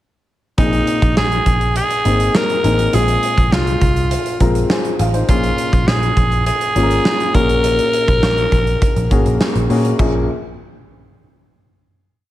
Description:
1980s-style pop; 102 BPM; 4/4; straight; Bb minor; A4 = 440 Hz
raspy alto saxophone; melody; 0.6-9.4 s; Eb4 to Bb4; -18 LUFS; equal
warm baby grand piano; accompaniment; 0.6-10.3 s; Bb1 to Ab5; -20 LUFS; left 2 dB
vintage muted picked electric bass; bass; 0.6-10.3 s; Ab1 to Bb2; -18 LUFS; equal
big rock drum kit; drums; 0.6-10.1 s; crash cymbal, hi-hat, kick drum, snare drum; -18 LUFS; equal; gated reverb
little or no reverb; -13 LUFS; side -14 dB against mid
0.6-10.0 verse; 10.0-12.3 final chord
0.6 Abadd9/Bb; 2.9 Fm/Bb; 5.3 Bbm7; 7.3 Gbadd9/Bb; 10.0 Bbm7

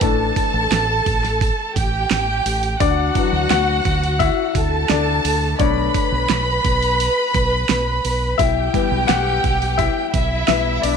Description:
piano-driven pop; 86 BPM; 4/4; straight; D major; A4 = 440 Hz
warm studio violin section; second line; 0.0-11.0 s; E4 to B5; -20 LUFS; right 1 dB
clear baby grand piano; accompaniment; 0.0-11.0 s; D3 to A5; -21 LUFS; left 14 dB
deep dub fingered electric bass; bass; 0.0-11.0 s; A1 to D2; -22 LUFS; right 1 dB
pop drum kit; drums; 0.0-11.0 s; hi-hat, kick drum, snare drum; -22 LUFS; right 4 dB
light reverb, studio reverb; 1960s-style stereo; -16 LUFS; side -6 dB against mid
0.0-11.0 A section
grand piano solo 0.0-11.0
0.0 Asus4; 2.8 Dadd9; 5.6 Bm7; 8.4 Em/B

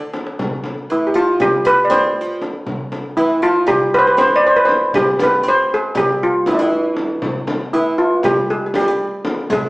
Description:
Turkish makam ensemble; 237 BPM (eighths); 9/8; straight; G makam hicaz; A4 = 445 Hz
steel pan; melody; 0.0-9.7 s; D4 to D5; -14 LUFS; equal
oud; second line; 0.0-9.7 s; E3-40c to C4; -24 LUFS; right 1 dB
darbuka; percussion; 0.0-9.6 s; -32 LUFS; equal
frame drum; percussion; 0.1-9.6 s; -24 LUFS; left 1 dB
wet large studio reverb, RT60 1.0 s; band playing live in one room, small speaker sound; -14 LUFS; side -22 dB against mid
0.4-9.7 A section
drum fill 0.0-0.4

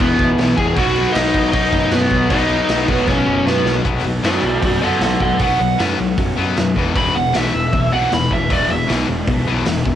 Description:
punk rock; 155 BPM; 4/4; straight; B major; A4 = 440 Hz
lead guitar through a small cranked amp; melody; 0.0-8.9 s; B3 to B5; -18 LUFS; right 2 dB; overdrive, cassette tape, analog delay
distorted electric guitar; riff; 0.0-10.0 s; E2 to B3; -20 LUFS; left 6 dB; overdrive, cassette tape
distorted electric guitar; riff; 0.0-10.0 s; E2 to B3; -26 LUFS; right 1 dB; distortion, cassette tape
fuzz picked electric bass; bass; 0.0-10.0 s; E1 to F#2; -23 LUFS; right 1 dB; overdrive
raw garage drum kit; drums; 0.0-9.9 s; crash cymbal, hi-hat, kick drum, snare drum; -21 LUFS; right 1 dB; cassette tape
little or no reverb; home recording on cassette; -14 LUFS; side -10 dB against mid
0.0-3.9 A section; 3.9-10.0 B section
drum fill 3.1-3.9; lead electric guitar solo 3.9-10.0
0.0 E; 0.8 B; 3.9 B5; 6.8 E5

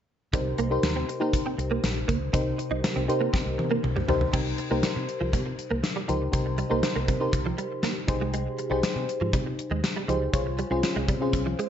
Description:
1980s-style pop; 120 BPM; 4/4; straight; C minor; A4 = 436 Hz
mellow FM electric piano; accompaniment; 0.3-11.7 s; C3 to Db5; -28 LUFS; left 2 dB; chorus, phaser
direct-recorded clean electric guitar; riff; 0.3-11.7 s; F3 to Eb4; -32 LUFS; right 5 dB; ensemble chorus, digital delay
vintage muted fingered electric bass; bass; 0.3-11.5 s; Bb1 to C3; -31 LUFS; equal
gated 80s drum kit; drums; 0.3-11.7 s; crash cymbal, hi-hat, kick drum, snare drum, toms; -28 LUFS; equal; gated reverb
light reverb; nothing above 7.8 kHz; -24 LUFS; side -9 dB against mid
0.3-4.3 A section; 4.3-11.7 B section
drum fill 3.3-4.3
0.3 Cm7; 8.1 Abmaj7/C; 10.3 Dbmaj7/C

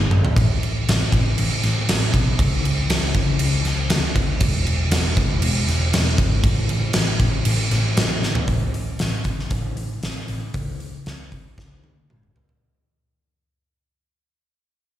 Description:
quiet-loud alternative rock; 118 BPM; 4/4; straight; A4 = 437 Hz
hollow-body short-scale picked electric bass; bass; 0.0-12.6 s; E1 to D2; -21 LUFS; equal
huge arena drum kit; drums; 0.1-12.6 s; crash cymbal, hi-hat, kick drum, snare drum, toms; -21 LUFS; equal
little or no reverb; live gig heard through the venue's PA, recital hall reverb; -18 LUFS; side -12 dB against mid
0.0-8.5 A section; 8.5-12.6 B section
drum fill 0.0-0.4, 8.2, 11.6-12.6; fade-out 8.5-12.6

